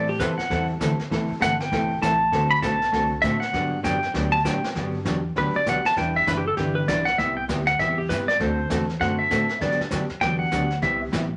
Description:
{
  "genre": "country, western swing",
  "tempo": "198 BPM",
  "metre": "4/4",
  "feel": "swing 62% on 8ths",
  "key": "G major",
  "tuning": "A4 = 440 Hz",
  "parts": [
    { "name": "pedal steel guitar", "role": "melody", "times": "0.0-11.0 s", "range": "G4 to B5", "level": "-25 LUFS", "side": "equal", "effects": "none" },
    { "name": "archtop guitar, miked and amplified", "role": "accompaniment", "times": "0.0-11.2 s", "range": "C3 to B4", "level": "-29 LUFS", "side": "equal", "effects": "none" },
    { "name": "upright bass", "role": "bass", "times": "0.0-11.4 s", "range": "E1 to A2", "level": "-32 LUFS", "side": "equal", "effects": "none" },
    { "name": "jazz brush drum kit", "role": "drums", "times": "0.2-11.4 s", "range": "brushed snare drum, hi-hat, kick drum, snare drum", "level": "-34 LUFS", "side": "equal", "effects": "none" }
  ],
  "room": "wet studio reverb, RT60 0.5 s",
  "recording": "none",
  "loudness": "-23 LUFS",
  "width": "mono",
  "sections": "0.0-4.8 A section; 4.8-11.4 A section",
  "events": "pedal steel guitar solo 0.0-4.8, 4.8-11.4",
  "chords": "0.0 D7; 1.1 C6; 2.3 D7; 3.5 Gmaj7; 6.0 Em7; 7.2 Cmaj7; 8.4 D7; 9.6 Gmaj7; 10.8 Cmaj7"
}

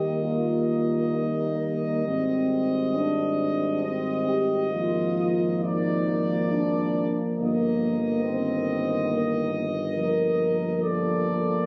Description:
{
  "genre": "classical, hymn-like piece for brass band",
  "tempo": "68 BPM",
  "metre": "3/4",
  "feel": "uneven beats, rubato",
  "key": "Eb major",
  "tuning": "A4 = 442 Hz",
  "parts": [
    { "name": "bright trumpet section", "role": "melody", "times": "0.0-11.7 s", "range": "D5 to Eb5", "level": "-33 LUFS", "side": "equal", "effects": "none" },
    { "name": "dark French horn section", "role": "second line", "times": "0.0-11.7 s", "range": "Bb3 to Bb4", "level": "-30 LUFS", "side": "equal", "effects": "none" },
    { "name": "mellow euphonium", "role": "accompaniment", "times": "0.0-11.7 s", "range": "Eb3 to G3", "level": "-34 LUFS", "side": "equal", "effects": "none" },
    { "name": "warm euphonium", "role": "accompaniment", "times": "0.0-11.7 s", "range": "Bb3 to C4", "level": "-34 LUFS", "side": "equal", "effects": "none" },
    { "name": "mellow tuba", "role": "bass", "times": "0.0-11.7 s", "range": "G1 to Eb2", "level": "-32 LUFS", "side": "equal", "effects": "none" }
  ],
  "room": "moderate scoring stage reverb, RT60 1.8 s",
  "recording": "recorded on a phone in the room, club ambience, compression",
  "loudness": "-25 LUFS",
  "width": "mono",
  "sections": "0.0-11.7 A section",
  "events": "none",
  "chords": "0.0 Eb; 2.1 Abmaj7; 4.7 Bb7/Ab; 7.4 Eb/G; 10.0 Gm7"
}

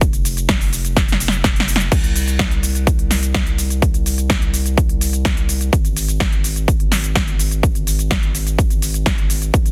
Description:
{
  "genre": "EDM, festival progressive house",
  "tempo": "126 BPM",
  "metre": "4/4",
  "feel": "straight",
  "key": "unclear",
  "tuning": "A4 = 441 Hz",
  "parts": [
    { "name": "saturated sub bass", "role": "bass", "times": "0.0-9.7 s", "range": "F1 to C2", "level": "-23 LUFS", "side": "equal", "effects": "sidechain pumping" },
    { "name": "big-room dance drum kit", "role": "drums", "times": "0.0-9.7 s", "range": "cabasa, crash cymbal, hi-hat, snare drum", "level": "-23 LUFS", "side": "equal", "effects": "overdrive" },
    { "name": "electronic kick drum", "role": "drums", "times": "0.0-9.6 s", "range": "none", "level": "-20 LUFS", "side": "equal", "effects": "overdrive" }
  ],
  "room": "digital ambience",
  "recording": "dense, heavily limited modern master",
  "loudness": "-18 LUFS",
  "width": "mono",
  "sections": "0.0-9.7 A section",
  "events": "drum fill 1.0-1.9",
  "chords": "none"
}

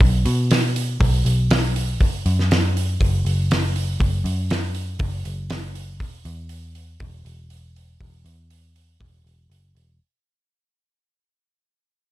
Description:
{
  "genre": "rock, shoegaze and dream pop",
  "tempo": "120 BPM",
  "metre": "4/4",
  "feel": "straight",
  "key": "unclear",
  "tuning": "A4 = 440 Hz",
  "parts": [
    { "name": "vintage muted picked electric bass", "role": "bass", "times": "0.0-10.0 s", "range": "E1 to B2", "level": "-21 LUFS", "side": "equal", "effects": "none" },
    { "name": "loose indie drum kit", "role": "drums", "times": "0.0-9.9 s", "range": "hi-hat, kick drum, snare drum", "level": "-21 LUFS", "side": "equal", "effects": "none" }
  ],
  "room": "little or no reverb",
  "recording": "none",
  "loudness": "-18 LUFS",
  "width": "side -16 dB against mid",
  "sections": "0.0-10.0 A section",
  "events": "fade-out 0.0-10.0",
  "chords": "none"
}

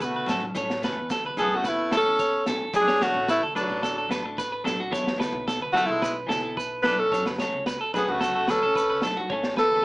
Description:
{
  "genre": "highlife guitar band",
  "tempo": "110 BPM",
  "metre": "4/4",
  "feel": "straight",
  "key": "A major",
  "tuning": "A4 = 440 Hz",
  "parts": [
    { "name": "bright alto saxophone", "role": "melody", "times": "0.0-9.8 s", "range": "D4 to B4", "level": "-23 LUFS", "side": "equal", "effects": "none" },
    { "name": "raspy tenor saxophone", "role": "second line", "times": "0.0-9.0 s", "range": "F#3 to D4", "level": "-31 LUFS", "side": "left 1 dB", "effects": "none" },
    { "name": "clean electric guitar", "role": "accompaniment", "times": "0.0-9.8 s", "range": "E3 to A4", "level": "-34 LUFS", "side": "left 1 dB", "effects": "spring reverb" },
    { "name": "electric guitar at the edge of break-up", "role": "arpeggios", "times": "0.0-9.8 s", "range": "F#4 to C#5", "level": "-28 LUFS", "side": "right 1 dB", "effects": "slapback echo" },
    { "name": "upright bass", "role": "bass", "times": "0.0-9.8 s", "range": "A1 to F#2", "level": "-40 LUFS", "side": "equal", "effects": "none" },
    { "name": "crunchy breakbeat drum kit", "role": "drums", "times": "0.0-9.7 s", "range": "kick drum, snare drum", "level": "-31 LUFS", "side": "equal", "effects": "none" },
    { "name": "congas", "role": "percussion", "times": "0.0-9.8 s", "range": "none", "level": "-38 LUFS", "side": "equal", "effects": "none" },
    { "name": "maracas", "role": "percussion", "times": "0.0-9.2 s", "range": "none", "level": "-44 LUFS", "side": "left 2 dB", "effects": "none" }
  ],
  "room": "moderate studio ambience, RT60 0.5 s",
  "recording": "small speaker sound",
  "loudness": "-22 LUFS",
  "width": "side -24 dB against mid",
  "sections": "0.0-9.3 A section",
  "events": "drum fill 0.0-0.5, 8.9-9.3",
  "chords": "0.0 F#m; 0.5 A; 2.7 D; 4.9 Esus4; 7.1 F#m; 9.3 A"
}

